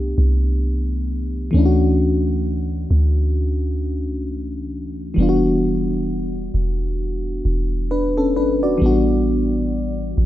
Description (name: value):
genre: R&B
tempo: 66 BPM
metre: 4/4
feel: swing 58% on 16ths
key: D major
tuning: A4 = 440 Hz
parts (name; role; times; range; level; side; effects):
- mellow FM electric piano; accompaniment; 0.0-10.3 s; E3 to D5; -20 LUFS; left 1 dB; chorus
- soft 808-style bass; bass; 0.0-10.3 s; E1 to D2; -20 LUFS; equal; none
room: light reverb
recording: none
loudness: -17 LUFS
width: side -14 dB against mid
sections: 0.0-10.3 A section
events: none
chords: 0.0 Cmaj13; 1.5 Dmaj9; 5.2 Em9; 8.8 A13sus4